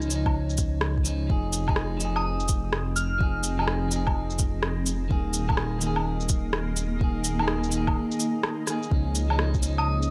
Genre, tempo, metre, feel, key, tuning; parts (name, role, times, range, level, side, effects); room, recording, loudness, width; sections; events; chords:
future garage; 126 BPM; 4/4; swing 64% on 16ths; F minor; A4 = 441 Hz
clean electric guitar; accompaniment; 0.0-10.1 s; Eb3 to Ab4; -34 LUFS; equal; vintage 12-bit sampler grit, sidechain pumping, tape echo
granular cloud pad; sustained chords; 0.1-10.1 s; Bb3 to Eb5; -36 LUFS; equal; built-in reverb, sidechain pumping
dark detuned saw bass; bass; 0.0-10.1 s; Eb1 to Db2; -30 LUFS; equal; sidechain pumping
electronic shaker, cabasa, woodblock and rim click; drums; 0.0-10.1 s; -32 LUFS; equal
electronic kick drum; drums; 0.3-9.6 s; -28 LUFS; equal
soft synth bell; melody; 2.2-3.4, 9.8-10.0 s; Eb6 to F6; -34 LUFS; equal; chorus, analog delay
moderate lush hall reverb, RT60 2.2 s; -26 LUFS; mono
0.0-8.9 A section; 8.9-10.1 A section
0.0 Dbadd9; 1.3 Fm7; 5.1 Ebsus4; 8.9 Dbadd9